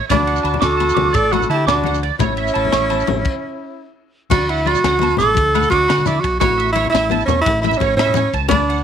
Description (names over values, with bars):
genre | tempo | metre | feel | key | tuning
highlife guitar band | 114 BPM (dotted quarters) | 12/8 | straight | D major | A4 = 435 Hz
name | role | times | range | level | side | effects
fingerpicked steel-string acoustic guitar | accompaniment | 0.0-8.8 s | A3 to D4 | -25 LUFS | left 16 dB | none
electric guitar at the edge of break-up | arpeggios | 0.0-8.8 s | C#5 to D6 | -23 LUFS | right 14 dB | analog chorus, slapback echo
warm tenor saxophone | melody | 0.1-8.8 s | C#4 to A4 | -17 LUFS | right 3 dB | none
warm trumpet | second line | 0.1-3.9 s | E4 to D5 | -26 LUFS | left 14 dB | none
fingered electric bass | bass | 0.1-8.8 s | A1 to D3 | -22 LUFS | equal | none
tight funk drum kit | drums | 0.1-8.8 s | crash cymbal, kick drum, ride cymbal, snare drum | -24 LUFS | left 4 dB | none
agogo bells | percussion | 0.1-8.7 s | none | -30 LUFS | left 17 dB | none
congas | percussion | 0.1-8.6 s | none | -26 LUFS | left 10 dB | none
shekere | percussion | 0.1-8.8 s | none | -28 LUFS | right 6 dB | none
room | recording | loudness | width
light reverb | 1960s-style stereo with parts hard left and right | -14 LUFS | side -8 dB against mid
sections
0.0-4.3 A section; 4.3-8.8 B section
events
stop 3.3-4.3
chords
0.1 D; 2.2 A; 4.3 D; 6.4 A